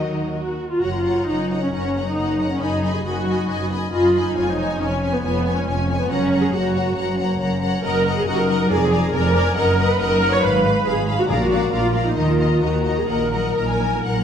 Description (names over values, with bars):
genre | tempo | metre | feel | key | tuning
classical, dramatic, fast romantic movement for symphony orchestra | 137 BPM | 4/4 | rubato | F# major, Eb minor from 7.8 s | A4 = 440 Hz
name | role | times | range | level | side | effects
warm symphonic violin section | melody | 0.0-14.2 s | Eb5 to B5 | -31 LUFS | left 4 dB | none
warm symphonic violin section | second line | 0.0-14.2 s | Gb4 to Bb5 | -28 LUFS | left 3 dB | none
rich symphonic viola section | accompaniment | 0.0-14.2 s | Gb3 to Db5 | -21 LUFS | right 1 dB | none
concert harp | arpeggios | 0.0-14.2 s | E#2 to Bb4 | -27 LUFS | left 6 dB | none
rich symphonic double bass section | bass | 0.0-14.2 s | E#1 to Eb2 | -26 LUFS | right 3 dB | none
warm symphonic cello section | bass | 0.0-14.2 s | E#2 to Eb3 | -25 LUFS | right 1 dB | none
timpani | percussion | 11.3-11.9 s | Bb2 | -30 LUFS | equal | none
room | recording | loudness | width
wet recital hall reverb, RT60 1.4 s | none | -17 LUFS | side -8 dB against mid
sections
0.8-14.2 A section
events
none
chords
0.0 Ebm; 0.8 F#; 2.6 G#m7/F#; 4.4 C#/E#; 6.1 F#; 7.8 Ebm/Gb; 8.7 Bb7/F; 9.6 Ebm/Gb; 10.4 Fdim/Ab; 11.3 Bb; 12.2 Eb5; 13.1 Ebm/Bb